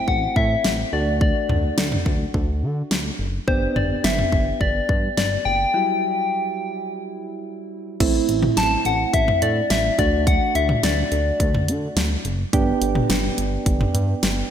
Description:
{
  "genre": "synth-pop",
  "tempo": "106 BPM",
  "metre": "4/4",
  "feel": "straight",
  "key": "A dorian",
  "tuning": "A4 = 440 Hz",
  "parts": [
    { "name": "soft struck synth lead", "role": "melody", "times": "0.0-12.3 s", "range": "C5 to A5", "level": "-22 LUFS", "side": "left 3 dB", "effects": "chorus, digital delay" },
    { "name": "soft electric-piano-like synth keys", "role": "accompaniment", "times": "0.0-14.5 s", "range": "F#3 to G4", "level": "-26 LUFS", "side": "right 4 dB", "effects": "chorus" },
    { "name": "chorused synth bass", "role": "bass", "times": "0.1-14.4 s", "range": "F#1 to D3", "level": "-24 LUFS", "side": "equal", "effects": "none" },
    { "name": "pop drum kit", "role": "drums", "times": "0.1-14.4 s", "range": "crash cymbal, hi-hat, kick drum, snare drum, toms", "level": "-22 LUFS", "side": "equal", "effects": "gated reverb" }
  ],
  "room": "moderate lush hall reverb, RT60 2.2 s",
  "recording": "bright 1980s-style digital production",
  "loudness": "-18 LUFS",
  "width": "side -9 dB against mid",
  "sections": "0.0-8.0 A section; 8.0-14.5 B section",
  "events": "break 5.7-8.0",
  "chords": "0.0 Am; 0.9 D; 3.5 G; 5.7 Emadd9; 8.0 Am; 10.0 D; 12.5 G",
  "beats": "0.08 0.65 | 1.21 1.78 2.34 2.91 | 3.48 4.04 4.61 5.17 | 5.74 6.31 6.87 7.44 | 8.00 8.57 9.14 9.70 | 10.27 10.83 11.40 11.97 | 12.53 13.10 13.66 14.23"
}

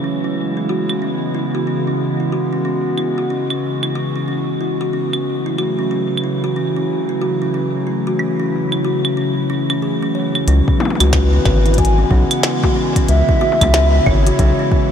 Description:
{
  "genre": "IDM",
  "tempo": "92 BPM",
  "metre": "4/4",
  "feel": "swing 62% on 16ths",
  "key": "C# minor",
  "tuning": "A4 = 440 Hz",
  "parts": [
    { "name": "warbly tape-like pad", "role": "sustained chords", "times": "0.0-14.9 s", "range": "C#3 to F#4", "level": "-20 LUFS", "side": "equal", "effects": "chorus, built-in reverb, shimmer reverb" },
    { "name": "kalimba", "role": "arpeggios", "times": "0.0-14.7 s", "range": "C#4 to C#5", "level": "-21 LUFS", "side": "right 1 dB", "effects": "low-pass filter, analog delay, shimmer reverb" },
    { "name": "glitchy drum kit", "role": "drums", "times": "0.9-14.6 s", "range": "claves, hi-hat, snare drum, toms", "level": "-23 LUFS", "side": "equal", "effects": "studio ambience, analog delay" },
    { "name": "round analog bass", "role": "bass", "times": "10.5-14.5 s", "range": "G#1 to C#2", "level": "-14 LUFS", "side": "equal", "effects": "none" },
    { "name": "electronic kick drum", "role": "drums", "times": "10.7-14.9 s", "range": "none", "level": "-17 LUFS", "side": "equal", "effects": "studio ambience" },
    { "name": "warbly nostalgic lead", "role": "melody", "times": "11.1-14.9 s", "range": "B4 to G#5", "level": "-20 LUFS", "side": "equal", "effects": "wide subtle chorus, tape echo, shimmer reverb" }
  ],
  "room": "moderate huge ambient reverb, RT60 7.7 s",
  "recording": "dreamy mix soaked in reverb",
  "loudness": "-15 LUFS",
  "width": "side -8 dB against mid",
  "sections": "0.0-10.5 A section; 10.5-14.9 B section",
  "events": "none",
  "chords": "0.0 C#m7; 5.3 F#m7; 10.5 C#m7",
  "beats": "| 0.04 0.69 1.34 2.00 | 2.65 3.30 3.95 4.61 | 5.26 5.91 6.56 7.21 | 7.87 8.52 9.17 9.82 | 10.48 11.13 11.78 12.43 | 13.09 13.74 14.39"
}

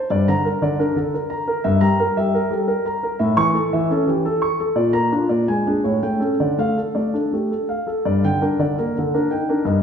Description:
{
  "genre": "classical, baroque-style suite movement for grand piano",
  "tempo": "114 BPM",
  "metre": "3/4",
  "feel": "rubato",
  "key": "D minor",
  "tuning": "A4 = 439 Hz",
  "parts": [
    { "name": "warm concert grand piano", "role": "solo", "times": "0.0-9.8 s", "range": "G2 to C#6", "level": "-17 LUFS", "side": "equal", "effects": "none" }
  ],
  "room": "wet recital hall reverb, RT60 1.6 s",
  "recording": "recorded in a church or concert hall",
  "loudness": "-17 LUFS",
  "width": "side -7 dB against mid",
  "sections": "0.0-8.1 A section; 8.1-9.8 A section",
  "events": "none",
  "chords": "0.1 Gm (rootless); 1.7 Edim/G; 3.2 A; 4.8 Bb; 5.3 Bb7; 5.8 A7; 6.4 Dm; 8.1 Gm",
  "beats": "| 0.10 0.62 1.14 | 1.65 2.17 2.69 | 3.20 3.72 4.24 | 4.76 5.29 5.83 | 6.39 6.96 7.51 | 8.06 8.59 9.12 | 9.65"
}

